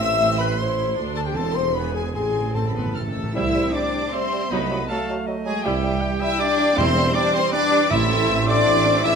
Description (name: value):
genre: classical, dramatic, fast romantic movement for symphony orchestra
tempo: 157 BPM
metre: 3/4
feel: rubato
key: A minor, C major from 3.4 s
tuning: A4 = 443 Hz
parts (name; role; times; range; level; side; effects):
- rich studio violin section; melody; 0.0-9.2 s; G5 to F6; -28 LUFS; left 2 dB; none
- clear clarinet; second line; 0.0-9.2 s; G4 to G5; -32 LUFS; left 1 dB; none
- mellow hollow silver concert flute; second line; 0.0-9.2 s; C5 to E6; -32 LUFS; left 2 dB; none
- warm symphonic violin section; second line; 0.0-9.2 s; G4 to E6; -28 LUFS; left 3 dB; none
- rich symphonic viola section; accompaniment; 0.0-9.2 s; Gb3 to A4; -31 LUFS; right 2 dB; none
- dark French horn section; sustained chords; 0.0-9.2 s; G3 to E5; -26 LUFS; left 4 dB; none
- mellow tuba; bass; 0.0-9.2 s; E1 to D2; -29 LUFS; right 5 dB; none
- rich symphonic cello section; bass; 0.0-9.2 s; D2 to E4; -28 LUFS; right 2 dB; none
- rich symphonic double bass section; bass; 0.0-9.2 s; E1 to E2; -30 LUFS; right 4 dB; none
- timpani; percussion; 2.2-3.3, 6.8-8.4 s; E2 to A2; -28 LUFS; equal; none
- bright trumpet; stabs; 2.8-9.2 s; G4 to E5; -26 LUFS; equal; none
- clear trombone section; sustained chords; 3.3-9.2 s; E3 to D4; -30 LUFS; right 6 dB; none
- mellow bassoon; accompaniment; 3.4-9.2 s; Gb3 to A3; -30 LUFS; right 3 dB; none
room: moderate recital hall reverb, RT60 1.3 s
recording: none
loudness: -18 LUFS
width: side -6 dB against mid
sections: 0.0-3.4 A section; 3.4-9.2 B section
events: timpani fill 2.2-3.4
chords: 0.0 Am; 1.0 D7sus4; 1.4 Am/E; 1.8 E; 2.2 Am; 3.4 C; 4.5 Cdim7; 5.7 C; 6.8 C/E; 7.9 Am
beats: 0.20 0.58 | 0.96 1.35 1.75 | 2.15 2.55 2.95 | 3.35 3.75 4.13 | 4.52 4.90 5.27 | 5.65 6.03 6.41 | 6.78 7.16 7.53 | 7.91 8.29 8.67 | 9.06